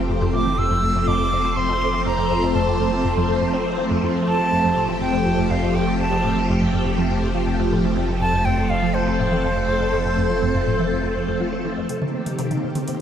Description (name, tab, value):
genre	ambient, sequencer-driven space music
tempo	122 BPM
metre	4/4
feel	straight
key	F major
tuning	A4 = 439 Hz
part	phased string machine	sustained chords	0.0-13.0 s	Eb3 to C5	-21 LUFS	equal	ensemble chorus, phaser
part	resonant blip pluck	riff	0.0-13.0 s	F2 to C4	-26 LUFS	right 1 dB	phaser, ensemble chorus, tape echo
part	warm sub bass	bass	0.0-11.9 s	F1	-28 LUFS	equal	none
part	silver concert flute	melody	0.3-11.4 s	C5 to E6	-24 LUFS	equal	tape echo
part	booming analog drum machine	percussion	11.9-13.0 s	hi-hat, toms	-28 LUFS	equal	tape echo
room	wet huge ambient reverb, RT60 8.4 s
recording	none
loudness	-18 LUFS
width	side -9 dB against mid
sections	0.0-11.9 A section; 11.9-13.0 B section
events	none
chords	0.0 Fadd9; 11.9 Cm7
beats	| 0.09 0.58 1.07 1.57 | 2.06 2.55 3.04 3.53 | 4.03 4.52 5.01 5.50 | 5.99 6.48 6.98 7.47 | 7.96 8.45 8.94 9.44 | 9.93 10.42 10.91 11.40 | 11.89 12.39 12.88